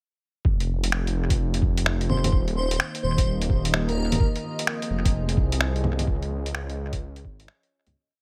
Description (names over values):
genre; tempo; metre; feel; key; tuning
future garage; 128 BPM; 4/4; swing 64% on 16ths; F minor; A4 = 439 Hz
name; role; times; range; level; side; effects
swelling detuned saw bass; bass; 0.4-7.9 s; Eb1 to Db2; -28 LUFS; equal; tube saturation, sidechain pumping
electronic kick drum; drums; 0.4-7.4 s; none; -25 LUFS; equal; small room ambience
lo-fi sampler-style drum kit; drums; 0.6-7.9 s; bongos, finger snaps, hi-hat; -30 LUFS; equal; overdrive, small room ambience, analog delay
airy dreamy lead; melody; 2.1-4.3 s; Bb4 to C5; -34 LUFS; equal; chorus, tape echo
warbly tape-like pad; sustained chords; 2.3-8.0 s; Eb3 to Eb5; -34 LUFS; equal; chorus, built-in reverb, sidechain pumping
room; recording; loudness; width
little or no reverb; echo-heavy mix; -25 LUFS; mono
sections
0.5-8.0 groove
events
fade-out 5.5-8.0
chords
0.5 F5; 2.3 Eb; 4.2 Fm7; 6.1 Dbadd9